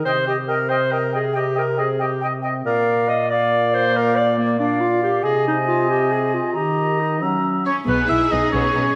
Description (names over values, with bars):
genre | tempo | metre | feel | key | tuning
cinematic, heroic adventure film score | 92 BPM (dotted quarters) | 6/8 | straight | unclear | A4 = 442 Hz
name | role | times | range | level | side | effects
mellow clarinet | second line | 0.0-7.9 s | Bb3 to Eb5 | -23 LUFS | equal | none
concert flute | second line | 0.1-7.6 s | F5 to Bb5 | -28 LUFS | equal | none
warm oboe | second line | 0.1-9.0 s | B4 to Fb5 | -26 LUFS | equal | none
bright trombone section | sustained chords | 0.1-7.7 s | Bb2 to Gb3 | -27 LUFS | equal | none
warm symphonic violin section | melody | 7.7-9.0 s | B4 to E5 | -33 LUFS | equal | none
warm chamber cello section | bass | 7.7-9.0 s | B3 to E4 | -25 LUFS | equal | none
warm symphonic violin section | second line | 7.9-9.0 s | B3 to D#4 | -29 LUFS | equal | none
rich symphonic viola section | accompaniment | 7.9-9.0 s | G#4 | -28 LUFS | equal | none
rich symphonic double bass section | bass | 7.9-8.8 s | B1 | -27 LUFS | equal | none
room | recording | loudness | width
wet scoring stage reverb, RT60 1.9 s | none | -20 LUFS | mono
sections
0.0-7.9 A section; 7.9-9.0 B section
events
none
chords
0.1 Cm; 2.7 Bb; 5.2 Ab/C; 6.5 Eb; 7.2 Gb7; 7.9 B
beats
| 0.05 0.70 | 1.35 2.00 | 2.65 3.30 | 3.94 4.59 | 5.24 5.89 | 6.54 7.21 | 7.87 8.53